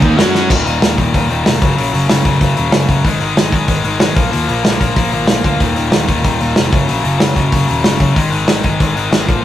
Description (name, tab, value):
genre	punk rock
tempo	188 BPM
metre	4/4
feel	straight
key	unclear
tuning	A4 = 440 Hz
part	distorted electric guitar	riff	0.0-0.5 s	Eb3 to Gb4	-20 LUFS	right 2 dB	distortion
part	sludgy distorted guitar	riff	0.0-0.5 s	Eb3 to Gb4	-17 LUFS	right 3 dB	overdrive
part	tight distorted guitar	riff	0.0-9.4 s	Eb2 to Gb4	-16 LUFS	left 4 dB	distortion
part	picked electric bass	bass	0.0-9.4 s	Eb1 to Gb2	-18 LUFS	equal	none
part	loose indie drum kit	drums	0.0-9.4 s	crash cymbal, hi-hat, kick drum, snare drum	-14 LUFS	equal	none
room	light reverb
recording	rough rehearsal-room recording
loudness	-11 LUFS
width	side -12 dB against mid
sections	0.5-9.4 A section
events	drum fill 0.3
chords	0.2 Gb5; 0.5 Eb5; 1.6 Gb5; 3.0 Ab5; 4.2 Bb5; 5.6 Eb5; 6.7 Gb; 8.2 Ab5